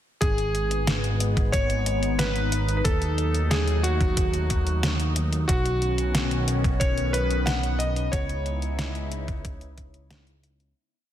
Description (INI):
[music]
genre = synthwave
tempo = 91 BPM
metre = 4/4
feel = straight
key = C# minor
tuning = A4 = 439 Hz
[part]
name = clear electric grand piano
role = melody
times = 0.2-10.1 s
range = F#4 to F#5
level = -28 LUFS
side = equal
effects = digital delay
[part]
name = phased analog pad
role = sustained chords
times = 0.6-10.7 s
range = C#3 to E4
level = -32 LUFS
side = left 2 dB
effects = phaser, chorus, sidechain pumping
[part]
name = fat analog bass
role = bass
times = 0.2-10.7 s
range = G#1 to D#2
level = -26 LUFS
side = equal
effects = tube saturation
[part]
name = detuned 8-bit digital drum machine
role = drums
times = 0.2-10.7 s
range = hi-hat, snare drum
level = -29 LUFS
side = equal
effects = overdrive
[part]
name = electronic kick drum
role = drums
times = 0.2-9.9 s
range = none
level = -26 LUFS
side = equal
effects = overdrive
[sound]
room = light reverb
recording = dense, heavily limited modern master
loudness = -22 LUFS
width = side -11 dB against mid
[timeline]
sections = 0.2-10.8 verse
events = fade-out 7.2-10.8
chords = 0.2 G#m; 2.9 D#dim; 5.5 Badd9; 8.1 C#m7